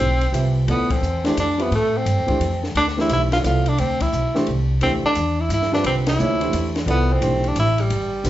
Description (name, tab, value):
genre	modal jazz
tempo	174 BPM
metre	3/4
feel	swing 64% on 8ths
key	D dorian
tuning	A4 = 441 Hz
part	breathy tenor saxophone	melody	0.0-8.3 s	G3 to F4	-21 LUFS	right 1 dB	none
part	upright bass	bass	0.0-8.3 s	G1 to A2	-21 LUFS	equal	none
part	compact cocktail drum kit	drums	0.2-8.3 s	hi-hat, kick drum, ride cymbal, snare drum	-29 LUFS	left 1 dB	none
part	warm baby grand piano	accompaniment	0.3-8.3 s	D3 to E5	-25 LUFS	equal	none
room	moderate large studio reverb, RT60 0.9 s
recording	heard from further back in the room, nothing above 7.7 kHz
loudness	-17 LUFS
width	side -14 dB against mid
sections	0.0-8.3 A section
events	band accent 0.9, 6.0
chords	0.0 C; 0.7 Dm9; 4.8 C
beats	0.00 0.34 | 0.69 1.03 1.38 | 1.72 2.07 2.41 | 2.75 3.10 3.44 | 3.79 4.13 4.47 | 4.82 5.16 5.50 | 5.85 6.19 6.54 | 6.88 7.22 7.56 | 7.91 8.25